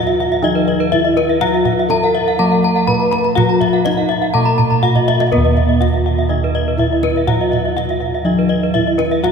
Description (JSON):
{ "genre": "Balinese gamelan", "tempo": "123 BPM", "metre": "4/4", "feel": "straight", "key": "unclear", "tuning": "A4 = 440 Hz", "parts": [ { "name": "gamelan-type bronze metallophone", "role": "melody", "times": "0.0-9.3 s", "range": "Cb4-40c to Cb5-40c", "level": "-19 LUFS", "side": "right 2 dB", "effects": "none" }, { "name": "gamelan-type bronze metallophone", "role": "accompaniment", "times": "0.0-9.3 s", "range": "Eb3 to Cb4-40c", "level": "-23 LUFS", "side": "left 4 dB", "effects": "none" }, { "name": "gamelan-type bronze metallophone", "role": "arpeggios", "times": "0.0-9.3 s", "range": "Cb5-40c to Cb6-40c", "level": "-19 LUFS", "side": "left 5 dB", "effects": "none" }, { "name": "gamelan-type bossed gongs", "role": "bass", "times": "0.0-9.3 s", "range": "Eb2 to Cb5-40c", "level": "-18 LUFS", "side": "equal", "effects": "none" }, { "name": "gamelan-type bronze metallophone", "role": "arpeggios", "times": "0.1-9.2 s", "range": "Cb5-40c to Cb6-40c", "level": "-22 LUFS", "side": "right 4 dB", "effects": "none" }, { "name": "kendang", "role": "percussion", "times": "0.1-9.3 s", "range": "none", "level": "-24 LUFS", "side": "right 2 dB", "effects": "none" } ], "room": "wet cathedral reverb, RT60 6.1 s", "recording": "recorded in a church or concert hall", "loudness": "-13 LUFS", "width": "side -6 dB against mid", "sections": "0.0-9.3 A section", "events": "drum fill 4.7-5.3", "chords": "none" }